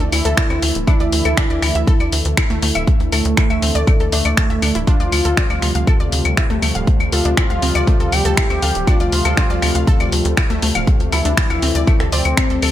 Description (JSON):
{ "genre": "melodic techno", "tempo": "120 BPM", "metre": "4/4", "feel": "straight", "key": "unclear", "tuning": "A4 = 442 Hz", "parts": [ { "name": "fat analog lead", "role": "melody", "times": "0.0-12.7 s", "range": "A3 to G4", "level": "-22 LUFS", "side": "equal", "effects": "chorus, sidechain pumping, ping-pong delay" }, { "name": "lush unison pad", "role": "sustained chords", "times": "0.0-12.7 s", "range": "C3 to E4", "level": "-26 LUFS", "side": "right 1 dB", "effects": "chorus, sidechain pumping" }, { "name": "analog pluck", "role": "arpeggios", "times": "0.0-12.7 s", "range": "A3 to F5", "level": "-26 LUFS", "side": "left 1 dB", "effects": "chorus, sidechain pumping, ping-pong delay" }, { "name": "tight sequencer bass", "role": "bass", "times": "0.0-12.7 s", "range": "D1 to D2", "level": "-19 LUFS", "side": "equal", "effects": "sidechain pumping" }, { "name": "deep house drum kit", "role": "drums", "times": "0.0-12.7 s", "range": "claves, finger snaps, hi-hat", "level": "-20 LUFS", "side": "left 2 dB", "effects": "none" }, { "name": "electronic kick drum", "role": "drums", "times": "0.4-12.5 s", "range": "none", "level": "-16 LUFS", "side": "equal", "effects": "none" } ], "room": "light reverb", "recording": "bright 1980s-style digital production", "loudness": "-14 LUFS", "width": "side -12 dB against mid", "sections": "0.0-12.7 A section", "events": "none", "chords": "0.0 Dsus2; 4.9 Fadd9/D" }